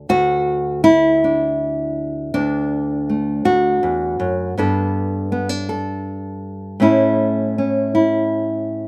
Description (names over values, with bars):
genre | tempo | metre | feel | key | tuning
folk, solo fingerstyle acoustic guitar | 54 BPM (dotted quarters) | 6/8 | rubato | D major | A4 = 436 Hz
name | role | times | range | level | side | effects
nylon-string guitar | solo | 0.0-8.9 s | D2 to A4 | -19 LUFS | equal | none
room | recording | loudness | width
light reverb | recorded outdoors, with no room sound | -18 LUFS | mono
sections
0.1-8.9 A section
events
none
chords
0.1 Dadd9; 4.6 Gadd9; 6.8 A